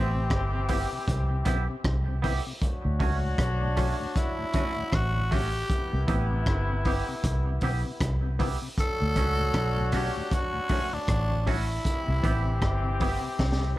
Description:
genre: roots reggae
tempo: 78 BPM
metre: 4/4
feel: swing 57% on 16ths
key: unclear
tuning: A4 = 439 Hz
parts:
  - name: growling tenor saxophone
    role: melody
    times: 0.0-13.0 s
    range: C4 to A4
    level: -32 LUFS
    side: equal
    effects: tape echo
  - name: brilliant trombone section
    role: second line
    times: 0.0-13.8 s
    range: C3 to C#5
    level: -35 LUFS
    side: left 3 dB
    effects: tape echo
  - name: mellow tonewheel organ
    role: accompaniment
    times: 0.0-13.8 s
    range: D2 to C#4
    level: -38 LUFS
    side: left 3 dB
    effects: overdrive, chorus vibrato, slow rotary speaker
  - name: twangy electric guitar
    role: accompaniment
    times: 0.0-13.2 s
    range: A3 to G4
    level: -36 LUFS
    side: right 5 dB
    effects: lush chorus, tape echo
  - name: vintage muted fingered electric bass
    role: bass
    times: 0.0-13.7 s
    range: G1 to D2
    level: -27 LUFS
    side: equal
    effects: none
  - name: crunchy breakbeat drum kit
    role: drums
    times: 0.3-13.7 s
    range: hi-hat, kick drum, rim click, snare drum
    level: -29 LUFS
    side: equal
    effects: none
room: small room ambience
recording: none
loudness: -24 LUFS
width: side -16 dB against mid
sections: 0.0-13.8 A section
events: drum fill 13.4-13.8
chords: 0.0 Cmaj7; 2.6 Dmaj7; 5.7 Cmaj7; 8.8 Dmaj7; 11.9 Cmaj7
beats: 0.31 1.08 1.85 | 2.62 3.39 4.16 4.93 | 5.70 6.47 7.24 8.01 | 8.78 9.55 10.32 11.09 | 11.86 12.62 13.39

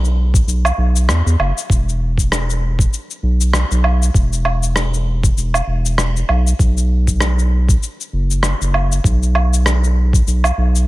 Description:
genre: sunset chillout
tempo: 98 BPM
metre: 4/4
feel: swing 56% on 16ths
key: unclear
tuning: A4 = 440 Hz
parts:
  - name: round analog bass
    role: bass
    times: 0.0-10.9 s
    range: E1 to E2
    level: -15 LUFS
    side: equal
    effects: none
  - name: electronic cabasa, woodblock and rim click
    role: drums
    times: 0.0-10.9 s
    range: none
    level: -21 LUFS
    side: equal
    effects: none
  - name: electronic kick drum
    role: drums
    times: 0.3-10.2 s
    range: none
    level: -15 LUFS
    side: equal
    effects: none
room: little or no reverb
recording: none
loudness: -14 LUFS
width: side -18 dB against mid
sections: 0.0-10.9 A section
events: none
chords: none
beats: 0.47 1.08 | 1.69 2.31 2.92 3.53 | 4.14 4.75 5.37 5.98 | 6.59 7.20 7.82 8.43 | 9.04 9.65 10.27

